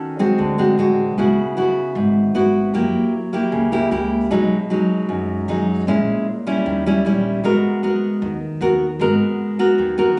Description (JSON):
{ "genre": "bossa nova", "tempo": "153 BPM", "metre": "4/4", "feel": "straight", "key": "G# minor", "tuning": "A4 = 440 Hz", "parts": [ { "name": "nylon-string guitar", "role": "accompaniment", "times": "0.0-10.2 s", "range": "F#2 to A#4", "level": "-19 LUFS", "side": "equal", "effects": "none" }, { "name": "upright bass", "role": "bass", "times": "0.4-10.2 s", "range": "G#1 to F#2", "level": "-25 LUFS", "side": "equal", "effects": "none" } ], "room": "light reverb", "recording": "recorded on a phone in the room, club reverb, nothing above 10.8 kHz", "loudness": "-19 LUFS", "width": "mono", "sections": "0.0-10.2 A section", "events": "none", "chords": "0.4 D7#11; 1.2 C#m7; 2.7 F#7b9; 4.3 B6; 5.9 A#m7b5; 6.6 D#7b9; 7.4 G#m9" }